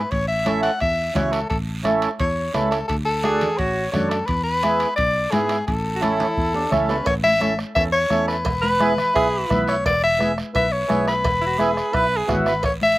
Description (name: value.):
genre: latin, cumbia.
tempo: 172 BPM.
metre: 4/4.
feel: straight.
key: A major.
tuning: A4 = 442 Hz.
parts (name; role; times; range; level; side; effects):
clear soprano saxophone; melody; 0.0-13.0 s; G#4 to F#5; -21 LUFS; left 1 dB; none.
fingered electric bass; bass; 0.0-13.0 s; E1 to G#2; -27 LUFS; equal; none.
bombo; percussion; 0.1-12.8 s; none; -28 LUFS; right 1 dB; none.
congas; percussion; 0.1-13.0 s; none; -28 LUFS; left 2 dB; none.
guiro; percussion; 0.1-13.0 s; none; -38 LUFS; right 4 dB; slapback echo.
timbales and cowbell; percussion; 0.1-12.8 s; none; -33 LUFS; right 4 dB; slapback echo.
mellow accordion; accompaniment; 0.5-12.5 s; B3 to B4; -23 LUFS; right 2 dB; slapback echo.
clear tenor saxophone; second line; 3.2-3.9, 6.0-12.4 s; C#4 to B4; -23 LUFS; right 2 dB; none.
room: little or no reverb.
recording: recorded outdoors, with no room sound.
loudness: -18 LUFS.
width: side -17 dB against mid.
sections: 0.0-7.1 A section; 7.1-13.0 B section.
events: drum fill 6.2-7.1.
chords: 0.1 A; 2.9 D; 4.3 E7; 5.7 A; 8.5 E.